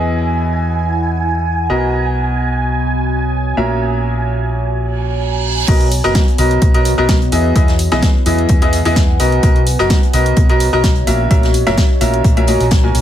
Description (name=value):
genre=piano house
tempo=128 BPM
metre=4/4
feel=swing 54% on 16ths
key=B major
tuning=A4 = 444 Hz
part: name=analog string pad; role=sustained chords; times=0.0-5.7 s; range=G#5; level=-22 LUFS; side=right 4 dB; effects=ensemble chorus, sidechain pumping
part: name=clear grand piano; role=riff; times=0.0-13.0 s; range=A#2 to G#5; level=-18 LUFS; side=left 1 dB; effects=sidechain pumping, digital delay
part: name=fingered electric bass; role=bass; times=0.0-13.0 s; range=F#1 to E2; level=-18 LUFS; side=equal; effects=sidechain pumping, low-pass filter
part: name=warbly tape-like pad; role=texture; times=0.0-13.0 s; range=B3 to D#6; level=-23 LUFS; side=equal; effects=chorus, built-in reverb, sidechain pumping
part: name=reverse cymbal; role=sound effects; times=5.0-5.7 s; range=none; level=-22 LUFS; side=right 7 dB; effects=none
part: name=electronic kick drum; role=drums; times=5.7-12.8 s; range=none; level=-13 LUFS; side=equal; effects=overdrive
part: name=punchy analog drum machine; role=drums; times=5.7-13.0 s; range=crash cymbal, hi-hat, snare drum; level=-22 LUFS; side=right 1 dB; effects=overdrive
part: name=vintage drum kit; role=drums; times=5.7-13.0 s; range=hi-hat, snare drum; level=-28 LUFS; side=left 3 dB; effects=sidechain pumping on hats, high-pass filter on hats, high-pass filter on snare, high-pass filter on room
room=small room reverb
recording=none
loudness=-12 LUFS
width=side -11 dB against mid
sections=0.0-5.7 A section; 5.7-13.0 B section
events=filter sweep on analog synth pad 0.0-5.7; reverse cymbal 5.0-5.7; drop 5.7-13.0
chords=0.0 Emaj7; 1.7 Bmaj7; 3.6 F#7/A#; 5.7 Bmaj7; 7.3 Emaj7; 9.2 Bmaj7; 11.1 F#7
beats=| 0.06 0.53 0.99 1.46 | 1.93 2.40 2.87 3.34 | 3.81 4.28 4.74 5.21 | 5.68 6.15 6.62 7.09 | 7.56 8.03 8.49 8.96 | 9.43 9.90 10.37 10.84 | 11.31 11.78 12.24 12.71